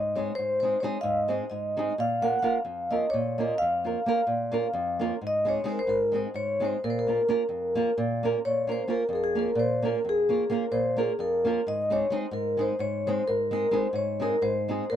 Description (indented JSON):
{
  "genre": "balkan folk",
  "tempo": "260 BPM (eighths)",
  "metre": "7/8",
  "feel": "straight",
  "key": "Bb minor",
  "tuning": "A4 = 440 Hz",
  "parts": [
    { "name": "vibraphone with medium mallets", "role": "melody", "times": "0.0-15.0 s", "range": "Ab4 to Gb5", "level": "-26 LUFS", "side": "left 1 dB", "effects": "none" },
    { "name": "flamenco guitar", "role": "accompaniment", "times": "0.0-15.0 s", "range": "F2 to Bb4", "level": "-29 LUFS", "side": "right 2 dB", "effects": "none" }
  ],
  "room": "light reverb",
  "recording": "dry, close 1970s-style studio recording",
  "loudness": "-24 LUFS",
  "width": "side -10 dB against mid",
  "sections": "0.0-8.5 A section; 8.5-15.0 A section",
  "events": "none",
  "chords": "0.0 Ab; 2.0 Bbm; 5.2 Ab; 6.8 Bbm; 11.7 Ab"
}